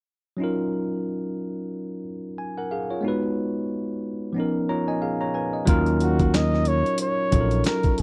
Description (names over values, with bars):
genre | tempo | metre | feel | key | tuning
R&B, neo-soul | 91 BPM | 4/4 | swing 58% on 16ths | Eb minor | A4 = 440 Hz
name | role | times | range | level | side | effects
bright tine electric piano | accompaniment | 0.4-8.0 s | F3 to Bb5 | -27 LUFS | equal | none
fretless electric bass | bass | 5.7-8.0 s | Bb1 to Eb2 | -25 LUFS | equal | none
dusty soul sampler-style drum kit | drums | 5.7-8.0 s | handclaps, hi-hat, kick drum, snare drum | -26 LUFS | equal | none
breathy flugelhorn | melody | 6.0-8.0 s | Gb4 to Eb5 | -28 LUFS | equal | none
room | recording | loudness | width
little or no reverb | dry, close 1970s-style studio recording | -24 LUFS | mono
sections
0.4-5.7 A section; 5.7-8.0 B section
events
tine electric piano fill 4.4-5.7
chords
0.4 Ebm9; 3.0 Abm7; 4.4 Db13; 5.7 Ebm9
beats
| 0.40 1.06 1.72 2.38 | 3.04 3.69 4.35 5.01 | 5.67 6.33 6.99 7.65